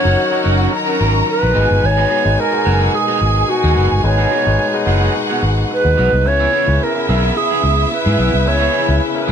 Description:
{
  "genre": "disco",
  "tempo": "109 BPM",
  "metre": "4/4",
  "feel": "straight",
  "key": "C# dorian",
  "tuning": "A4 = 440 Hz",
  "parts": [
    { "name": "alto flute", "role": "melody", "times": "0.0-9.0 s", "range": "F#4 to C#5", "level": "-17 LUFS", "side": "right 2 dB", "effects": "none" },
    { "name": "warm studio violin section", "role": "second line", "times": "0.0-9.3 s", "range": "E4 to A#5", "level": "-20 LUFS", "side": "right 1 dB", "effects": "none" },
    { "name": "barky tine electric piano", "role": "accompaniment", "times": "0.0-9.3 s", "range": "C#3 to C#5", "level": "-22 LUFS", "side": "left 5 dB", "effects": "overdrive" },
    { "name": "electric guitar at the edge of break-up", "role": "accompaniment", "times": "0.0-9.3 s", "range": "B3 to A#4", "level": "-24 LUFS", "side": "right 5 dB", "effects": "phaser" },
    { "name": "clear studio string section", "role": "sustained chords", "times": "0.0-9.3 s", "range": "B2 to G#4", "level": "-26 LUFS", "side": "left 2 dB", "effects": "none" },
    { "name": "vintage muted fingered electric bass", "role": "bass", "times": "0.1-9.3 s", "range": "F#1 to G#2", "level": "-16 LUFS", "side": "equal", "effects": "none" }
  ],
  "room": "little or no reverb",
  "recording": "none",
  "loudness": "-12 LUFS",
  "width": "side -8 dB against mid",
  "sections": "0.0-9.3 A section",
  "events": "none",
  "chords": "0.0 D#m7; 1.6 G#m7; 6.3 C#m7"
}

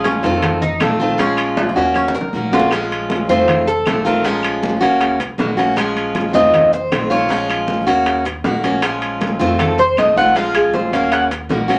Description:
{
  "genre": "latin, Cuban son and guajira",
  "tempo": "157 BPM",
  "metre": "4/4",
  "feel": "straight",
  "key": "Bb minor",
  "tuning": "A4 = 439 Hz",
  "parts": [
    { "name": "picked steel-string acoustic guitar", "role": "accompaniment", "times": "0.0-11.8 s", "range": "Eb3 to Gb4", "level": "-20 LUFS", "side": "equal", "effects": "none" },
    { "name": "Cuban tres", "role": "arpeggios", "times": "0.0-11.2 s", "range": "Db4 to Gb5", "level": "-19 LUFS", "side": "equal", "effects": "none" },
    { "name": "upright bass", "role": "bass", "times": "0.0-11.8 s", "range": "F1 to Eb2", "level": "-32 LUFS", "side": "equal", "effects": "none" },
    { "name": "bongos", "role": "percussion", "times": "0.1-11.8 s", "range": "none", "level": "-30 LUFS", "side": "equal", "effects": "none" },
    { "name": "congas", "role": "percussion", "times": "0.1-11.8 s", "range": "none", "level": "-27 LUFS", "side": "equal", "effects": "none" },
    { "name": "timbales", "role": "percussion", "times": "0.1-11.8 s", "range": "none", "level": "-26 LUFS", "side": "equal", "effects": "none" },
    { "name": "claves", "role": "percussion", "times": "0.4-11.3 s", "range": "none", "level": "-32 LUFS", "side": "equal", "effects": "none" }
  ],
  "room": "wet club reverb, RT60 0.6 s",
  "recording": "none",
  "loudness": "-16 LUFS",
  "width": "mono",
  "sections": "0.0-2.7 A section; 2.7-11.8 B section",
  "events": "drum fill 1.6-2.7; Cuban tres solo 2.7-11.8",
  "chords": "0.4 F7; 1.2 Bbm7; 2.0 Ebm7; 2.7 Bbm7; 3.5 F7; 4.2 Bbm7; 5.0 Ebm7; 5.8 Bbm7; 6.5 F7; 7.3 Bbm7; 8.1 Ebm7; 8.8 Bbm7; 9.6 F7; 10.4 Bbm7; 11.1 Ebm7"
}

